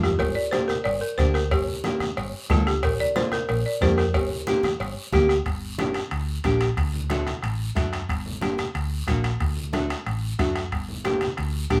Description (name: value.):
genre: latin, cumbia.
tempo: 183 BPM.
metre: 4/4.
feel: straight.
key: G minor, G harmonic minor from 5.5 s.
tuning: A4 = 437 Hz.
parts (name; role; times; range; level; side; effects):
folk marimba with hard mallets; melody; 0.0-4.5 s; F#4 to D5; -28 LUFS; equal; none.
nylon-string guitar; accompaniment; 0.0-11.8 s; A3 to A4; -27 LUFS; equal; none.
hollow-body short-scale fingered electric bass; bass; 0.0-11.8 s; G1 to F#2; -30 LUFS; equal; none.
bombo; percussion; 0.0-11.8 s; none; -31 LUFS; equal; none.
guiro; percussion; 0.0-11.8 s; none; -42 LUFS; equal; none.
congas; percussion; 0.1-11.8 s; none; -36 LUFS; equal; none.
cowbell and timbales; percussion; 0.2-11.8 s; none; -37 LUFS; equal; none.
room: moderate studio reverb, RT60 0.6 s.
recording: none.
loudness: -25 LUFS.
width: mono.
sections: 0.0-5.5 A section; 5.5-11.8 B section.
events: drum fill 0.0.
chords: 0.2 Gm; 2.8 Bb; 4.1 Gm; 6.8 D; 8.1 Gm; 9.4 D; 10.7 Gm.